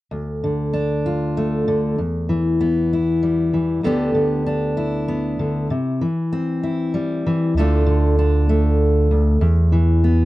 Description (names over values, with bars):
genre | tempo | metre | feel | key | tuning
acoustic folk duo or small band | 97 BPM | 3/4 | straight | D dorian | A4 = 440 Hz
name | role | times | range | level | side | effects
fingerpicked steel-string acoustic guitar | accompaniment | 0.1-10.2 s | D2 to G4 | -18 LUFS | left 1 dB | none
pure sine sub bass | bass | 7.5-10.2 s | D2 to E2 | -16 LUFS | right 1 dB | none
room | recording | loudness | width
light reverb | dry, close 1970s-style studio recording | -17 LUFS | side -17 dB against mid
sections
0.1-7.6 A section; 7.6-10.2 B section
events
none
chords
0.1 Dm; 2.0 Em; 3.8 G/D; 5.7 C; 7.6 Dm; 9.4 E5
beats
| 0.11 0.73 1.36 | 1.98 2.60 3.22 | 3.84 4.46 5.08 | 5.71 6.33 6.95 | 7.57 8.19 8.81 | 9.43 10.05